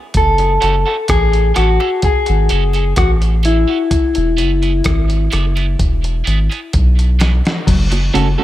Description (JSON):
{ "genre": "dub reggae", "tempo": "64 BPM", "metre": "4/4", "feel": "straight", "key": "unclear", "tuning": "A4 = 441 Hz", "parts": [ { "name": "dusty soul sampler-style drum kit", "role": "drums", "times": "0.1-8.4 s", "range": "crash cymbal, hi-hat, kick drum, rim click, snare drum", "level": "-18 LUFS", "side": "equal", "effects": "none" }, { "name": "electric guitar at the edge of break-up", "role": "melody", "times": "0.2-7.2 s", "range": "E4 to A4", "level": "-17 LUFS", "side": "left 3 dB", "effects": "tape echo" }, { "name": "soft dub sub bass", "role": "bass", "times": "0.2-8.4 s", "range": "E1 to B1", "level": "-14 LUFS", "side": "equal", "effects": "none" }, { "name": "bongos", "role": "percussion", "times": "0.4-8.1 s", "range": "none", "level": "-33 LUFS", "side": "right 3 dB", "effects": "none" }, { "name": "electric guitar at the edge of break-up", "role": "accompaniment", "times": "0.6-8.4 s", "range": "G#3 to A4", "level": "-24 LUFS", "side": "right 6 dB", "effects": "high-pass filter, tape echo" }, { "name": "mellow electric guitar", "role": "arpeggios", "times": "7.7-8.3 s", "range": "C#3 to F#3", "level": "-20 LUFS", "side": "left 5 dB", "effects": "lush chorus, tape echo" } ], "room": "light reverb", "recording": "echo-heavy mix", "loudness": "-12 LUFS", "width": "side -14 dB against mid", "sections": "0.0-7.7 A section", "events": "drum fill 5.8-7.7", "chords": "0.2 F#m; 3.9 E; 7.7 F#m", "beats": "| 0.15 1.09 2.03 2.97 | 3.91 4.85 5.79 6.73 | 7.67" }